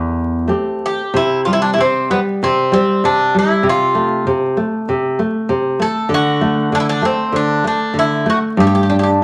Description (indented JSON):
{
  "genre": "fado-style ballad",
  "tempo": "97 BPM",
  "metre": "4/4",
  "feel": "rubato",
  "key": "C major",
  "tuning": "A4 = 441 Hz",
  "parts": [
    { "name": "Greek bouzouki", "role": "melody", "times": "0.0-9.1 s", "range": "B3 to A4", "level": "-19 LUFS", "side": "equal", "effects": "none" },
    { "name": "nylon-string guitar", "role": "accompaniment", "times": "0.0-9.2 s", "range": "E2 to G4", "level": "-18 LUFS", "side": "equal", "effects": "none" }
  ],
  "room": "moderate large studio reverb, RT60 0.9 s",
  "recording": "vinyl crackle",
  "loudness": "-16 LUFS",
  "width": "mono",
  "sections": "0.0-1.1 A section; 1.1-9.2 B section",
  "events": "none",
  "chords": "0.0 Am7; 1.1 C5; 3.7 F/C; 6.1 D; 8.6 G5"
}